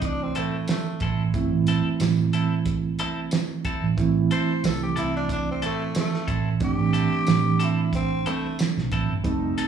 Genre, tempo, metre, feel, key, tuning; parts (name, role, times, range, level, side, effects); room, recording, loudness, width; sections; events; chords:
straight-eighth soul blues; 91 BPM; 4/4; straight; A minor; A4 = 442 Hz
growling tenor saxophone; melody; 0.0-8.6 s; A3 to C5; -29 LUFS; left 2 dB; slapback echo
reed electric piano; accompaniment; 0.0-9.7 s; E3 to E4; -27 LUFS; right 7 dB; fast tremolo, slapback echo
vintage muted fingered electric bass; bass; 0.0-9.6 s; F1 to C2; -25 LUFS; right 4 dB
cloth-damped thuddy drum kit; drums; 0.0-9.7 s; hi-hat, kick drum, snare drum, tambourine; -27 LUFS; right 3 dB
clean electric guitar; stabs; 0.4-9.7 s; C4 to A4; -32 LUFS; left 4 dB; slapback echo
warm horn section; sustained chords; 9.3-9.7 s; A4 to A5; -36 LUFS; right 2 dB
studio ambience; live gig heard through the venue's PA, club reverb; -21 LUFS; side -8 dB against mid
0.0-9.7 A section
tenor saxophone solo 0.0-9.7
0.0 Am